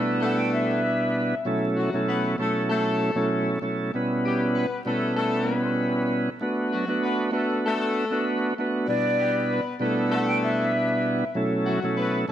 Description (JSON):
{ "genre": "hip hop", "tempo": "97 BPM", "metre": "4/4", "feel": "swing 54% on 16ths", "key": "B minor", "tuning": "A4 = 440 Hz", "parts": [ { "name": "bright tonewheel organ", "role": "accompaniment", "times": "0.0-12.3 s", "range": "B2 to B4", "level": "-24 LUFS", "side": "right 1 dB", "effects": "slow rotary speaker, high-pass filter, low-pass filter" }, { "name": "mellow horn section", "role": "stabs", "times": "0.0-12.3 s", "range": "F#3 to B4", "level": "-29 LUFS", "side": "left 3 dB", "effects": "high-pass filter, low-pass filter, ping-pong delay" }, { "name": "breathy mellow jazz flute", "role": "melody", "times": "0.2-1.4, 8.9-11.3 s", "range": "D5 to G5", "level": "-28 LUFS", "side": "left 1 dB", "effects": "high-pass filter, low-pass filter, ping-pong delay" } ], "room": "moderate echo chamber reverb, RT60 2.2 s", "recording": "vinyl crackle", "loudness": "-22 LUFS", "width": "side -10 dB against mid", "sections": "0.0-12.3 A section", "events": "none", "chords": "0.0 Em7/B; 1.5 F#m7/B; 3.9 C#m7b5/B; 6.4 Bm7; 8.9 Em7/B; 11.4 F#m7/B" }